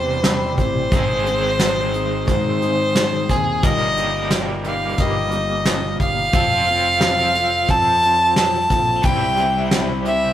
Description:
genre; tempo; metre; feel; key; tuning
folk rock and heartland rock; 89 BPM; 4/4; straight; unclear; A4 = 440 Hz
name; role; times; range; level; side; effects
clear fiddle; melody; 0.0-10.3 s; Ab4 to A5; -19 LUFS; equal; none
picked steel-string acoustic guitar; accompaniment; 0.0-10.3 s; G2 to A4; -28 LUFS; left 4 dB; none
crunchy overdriven guitar; riff; 0.0-10.3 s; Ab2 to Bb4; -25 LUFS; equal; tremolo
fingered electric bass; bass; 0.0-10.3 s; F1 to Ab2; -27 LUFS; equal; none
soft brush drum kit; drums; 0.2-10.2 s; hi-hat, kick drum, snare drum; -21 LUFS; equal; none
room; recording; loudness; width
moderate stone room reverb, RT60 1.2 s; rough rehearsal-room recording; -16 LUFS; side -11 dB against mid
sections
0.0-10.3 A section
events
none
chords
0.0 C; 0.9 Ab; 3.6 Ebadd9/G; 6.3 F; 9.0 C

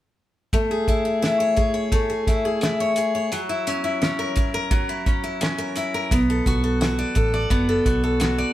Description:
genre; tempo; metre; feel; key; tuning
indie pop, bedroom pop; 86 BPM; 4/4; straight; A major; A4 = 442 Hz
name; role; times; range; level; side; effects
picked steel-string acoustic guitar; accompaniment; 0.5-8.5 s; F#3 to D5; -21 LUFS; left 1 dB; warbly pitch drift
cloth-damped thuddy drum kit; drums; 0.5-8.4 s; hi-hat, kick drum, snare drum; -23 LUFS; right 1 dB; none
vintage muted fingered electric bass; bass; 6.1-8.4 s; F#1 to B1; -25 LUFS; right 1 dB; none
room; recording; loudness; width
moderate stone room reverb, RT60 0.9 s; band playing live in one room; -19 LUFS; side -14 dB against mid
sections
0.5-8.5 A section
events
none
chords
0.5 Amaj7; 3.3 F#7; 6.1 Bm7

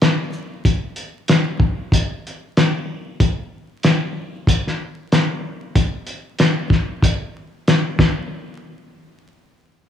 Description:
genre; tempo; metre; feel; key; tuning
hip hop; 94 BPM; 4/4; swing 59% on 16ths; none; none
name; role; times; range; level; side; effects
cloth-damped thuddy drum kit; drums; 0.0-8.2 s; hi-hat, kick drum, shaker, snare drum; -16 LUFS; left 1 dB; none
room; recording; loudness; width
moderate plate reverb, RT60 2.4 s; vinyl crackle, studio reverb; -17 LUFS; side -9 dB against mid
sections
0.0-8.3 A section; 8.3-9.9 B section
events
none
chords
none

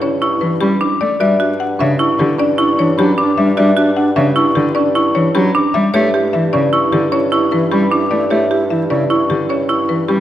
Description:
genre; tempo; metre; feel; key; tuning
classical, minimalist pattern music; 152 BPM; 6/4; straight; G lydian; A4 = 441 Hz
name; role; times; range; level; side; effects
buzzing marimba with hard mallets; melody; 0.0-10.2 s; G4 to F#5; -20 LUFS; left 5 dB; none
alto flute; second line; 0.0-10.2 s; D4 to E4; -20 LUFS; right 1 dB; none
buzzing marimba with hard mallets; arpeggios; 0.0-10.2 s; C#4 to G4; -18 LUFS; right 4 dB; none
warm bassoon; bass; 0.0-10.2 s; G2; -21 LUFS; equal; none
celesta; arpeggios; 0.2-10.2 s; E5 to D6; -20 LUFS; left 2 dB; none
rich cello; accompaniment; 0.4-10.2 s; C#3 to A3; -19 LUFS; equal; none
room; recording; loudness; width
wet scoring stage reverb, RT60 1.9 s; dark, warm production, vinyl crackle; -12 LUFS; side -12 dB against mid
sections
0.0-10.2 A section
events
none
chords
0.0 G69; 1.2 Em9/G; 5.9 G5

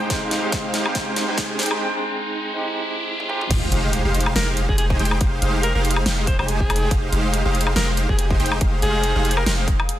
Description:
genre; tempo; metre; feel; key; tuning
future bass; 141 BPM; 4/4; swing 56% on 16ths, half-time; F minor; A4 = 445 Hz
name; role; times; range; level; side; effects
overdriven tine electric piano; accompaniment; 0.0-3.5 s; Ab3 to G5; -27 LUFS; right 2 dB; fast tremolo, sidechain pumping, tape echo
ethereal airy pad; sustained chords; 0.0-10.0 s; Ab3 to F6; -36 LUFS; left 2 dB; none
Celtic harp; arpeggios; 0.0-4.3 s; Eb4 to C5; -34 LUFS; right 2 dB; none
supersaw chords; riff; 0.0-9.8 s; Ab3 to Ab5; -24 LUFS; right 1 dB; analog chorus, cassette tape, sidechain pumping, low-pass filter
long sustained 808-style bass; bass; 0.0-9.7 s; F1; -23 LUFS; equal; sidechain pumping, high-pass filter
riser and impact; sound effects; 0.2-5.2 s; none; -29 LUFS; equal; none
big-room dance drum kit; drums; 0.1-10.0 s; crash cymbal, hi-hat, snare drum, toms, woodblock; -25 LUFS; left 1 dB; soft clipping on snare, high-pass filter on snare, studio reverb, high-pass filter on hats, high-pass filter on perc, high-pass filter on toms, high-pass filter on cymbals
electronic kick drum; drums; 0.1-9.8 s; none; -23 LUFS; equal; studio reverb
edgy alto saxophone; melody; 4.4-9.5 s; Ab4 to C5; -27 LUFS; equal; sidechain pumping, tape echo
room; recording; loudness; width
light reverb, digital ambience; dense, heavily limited modern master, high-pass filter; -18 LUFS; side -13 dB against mid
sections
0.0-3.5 A section; 3.5-10.0 B section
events
build-up 0.0-3.5; drum fill 0.0-1.8, 3.2-3.5; riser 0.2-3.5; break 1.8-3.5; drop 3.5-10.0; impact 3.5-5.2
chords
0.0 Fm9

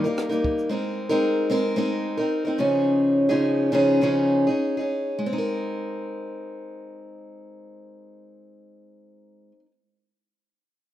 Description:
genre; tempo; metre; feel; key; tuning
acoustic pop; 96-113 BPM; 4/4; straight; Ab major; A4 = 439 Hz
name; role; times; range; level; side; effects
picked steel-string acoustic guitar; accompaniment; 0.0-9.7 s; Db3 to Bb4; -22 LUFS; equal; none
compact cocktail drum kit; drums; 0.1-0.7 s; kick drum, rim click, shaker; -30 LUFS; right 1 dB; none
room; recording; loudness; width
moderate plate reverb, RT60 1.6 s; rough home demo mix; -21 LUFS; side -12 dB against mid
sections
0.0-5.2 A section; 5.2-10.3 B section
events
slowing down 0.7-5.2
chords
0.0 Eb/G; 0.7 Abadd9; 2.6 Dbadd9; 5.2 Abadd9

